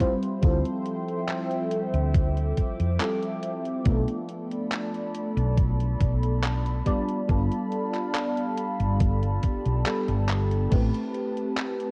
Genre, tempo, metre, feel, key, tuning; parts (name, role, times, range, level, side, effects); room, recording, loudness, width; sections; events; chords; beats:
vaporwave; 70 BPM; 4/4; straight; A4 = 438 Hz
FM electric piano with soft pad layer; accompaniment; 0.0-11.9 s; G3 to D5; -32 LUFS; equal; phaser, analog chorus, analog delay
warbly tape-like pad; sustained chords; 0.0-11.9 s; F3 to D6; -36 LUFS; equal; chorus, built-in reverb, phaser
detuned 8-bit digital drum machine; drums; 0.0-11.9 s; crash cymbal, handclaps, hi-hat; -37 LUFS; equal; overdrive
electronic kick drum; drums; 0.0-10.9 s; -26 LUFS; equal; overdrive
woody fretless electric bass; bass; 0.4-10.9 s; G1 to F2; -27 LUFS; equal
light reverb, digital ambience; worn, warbling old tape, cassette tape, warbly pitch drift; -26 LUFS; mono
0.0-11.9 A section
drum fill 10.3-10.7
0.0 Dm11; 3.9 Bm7b5; 6.9 G9; 10.7 Am9
| 0.43 1.29 2.15 3.00 | 3.86 4.72 5.58 6.43 | 7.29 8.15 9.00 9.86 | 10.72 11.57